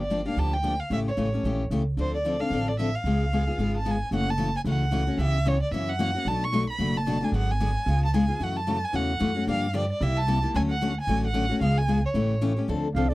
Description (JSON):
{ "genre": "acoustic string swing (jazz manouche)", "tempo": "224 BPM", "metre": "4/4", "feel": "swing 56% on 8ths", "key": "F# minor from 4.1 s", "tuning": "A4 = 440 Hz", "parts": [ { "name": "warm violin", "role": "melody", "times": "0.0-12.5 s", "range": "C5 to C#6", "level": "-30 LUFS", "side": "right 1 dB", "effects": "none" }, { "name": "picked steel-string acoustic guitar", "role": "accompaniment", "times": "0.0-13.1 s", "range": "B2 to A4", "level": "-27 LUFS", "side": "left 3 dB", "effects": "none" }, { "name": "upright bass", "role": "bass", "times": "0.0-13.1 s", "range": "F#1 to G2", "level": "-27 LUFS", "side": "right 1 dB", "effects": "none" }, { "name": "breathy clarinet", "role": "second line", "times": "13.0-13.1 s", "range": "D5 to F5", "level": "-29 LUFS", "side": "right 6 dB", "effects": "none" } ], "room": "little or no reverb", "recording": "dry, close 1970s-style studio recording", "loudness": "-23 LUFS", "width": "side -18 dB against mid", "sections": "0.0-4.1 A section; 4.1-12.7 B section", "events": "none", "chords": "0.0 Gm7; 0.9 A7; 2.0 Dm7; 3.0 C#7; 4.1 F#m7; 5.2 C#m7b5; 5.7 F#7; 6.3 Bm7; 7.3 G#m7b5; 7.9 C#7; 8.4 F#m7; 9.5 Gm7; 10.0 C7; 10.5 Dmaj7; 11.6 C#7; 12.2 A7" }